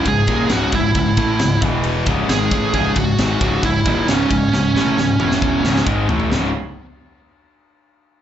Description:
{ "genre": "heavy metal", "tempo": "134 BPM", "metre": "4/4", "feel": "straight", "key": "C# minor", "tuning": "A4 = 440 Hz", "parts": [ { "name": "high-gain lead guitar", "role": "melody", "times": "0.0-5.8 s", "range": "C#4 to G#4", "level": "-20 LUFS", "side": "right 4 dB", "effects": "distortion" }, { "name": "distorted electric guitar", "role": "riff", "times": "0.0-6.5 s", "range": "C#2 to A3", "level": "-20 LUFS", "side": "left 5 dB", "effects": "distortion" }, { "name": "heavy high-gain guitar", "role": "riff", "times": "0.0-6.5 s", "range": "C#2 to A3", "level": "-25 LUFS", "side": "right 10 dB", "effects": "distortion, slapback echo" }, { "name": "fuzz fingered electric bass", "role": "bass", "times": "0.0-6.5 s", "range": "C#1 to A1", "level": "-23 LUFS", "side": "equal", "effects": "overdrive" }, { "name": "tight metal drum kit", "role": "drums", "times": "0.1-6.4 s", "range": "kick drum, ride cymbal, snare drum, toms", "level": "-22 LUFS", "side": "equal", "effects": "none" } ], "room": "little or no reverb", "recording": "live gig heard through the venue's PA, club reverb, nothing above 7.9 kHz", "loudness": "-15 LUFS", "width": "side -10 dB against mid", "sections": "0.0-6.3 A section; 6.3-8.1 B section", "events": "drum fill 4.5-6.3", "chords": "0.0 C#m; 1.6 E5; 2.1 C#m; 5.2 E5; 5.6 C#m; 6.3 C#5" }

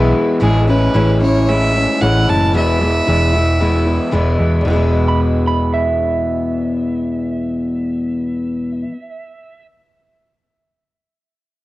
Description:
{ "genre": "rock", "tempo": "113 BPM", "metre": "4/4", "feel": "straight", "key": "E major", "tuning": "A4 = 439 Hz", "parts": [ { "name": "electric slide guitar", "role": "second line", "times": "0.0-0.1, 5.1-9.7 s", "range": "E5 to B5", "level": "-23 LUFS", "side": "right 4 dB", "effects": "cassette tape" }, { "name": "picked steel-string acoustic guitar", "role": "accompaniment", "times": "0.0-9.0 s", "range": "E2 to E4", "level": "-18 LUFS", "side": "left 2 dB", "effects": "cassette tape" }, { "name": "electric guitar through a small old amp", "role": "riff", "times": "0.0-8.9 s", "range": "E2 to E4", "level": "-23 LUFS", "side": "right 1 dB", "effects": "cassette tape" }, { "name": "hollow-body short-scale fingered electric bass", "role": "bass", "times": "0.0-8.8 s", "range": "E1 to E2", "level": "-17 LUFS", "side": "equal", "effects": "tube saturation" }, { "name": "rich fiddle", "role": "melody", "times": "0.4-4.1 s", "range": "G#4 to A5", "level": "-19 LUFS", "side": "right 2 dB", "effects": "cassette tape" } ], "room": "light reverb, small room ambience", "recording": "home recording on cassette", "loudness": "-13 LUFS", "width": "side -17 dB against mid", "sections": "0.4-4.7 A section; 4.7-8.9 B section", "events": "none", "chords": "0.4 Amaj7; 2.5 E" }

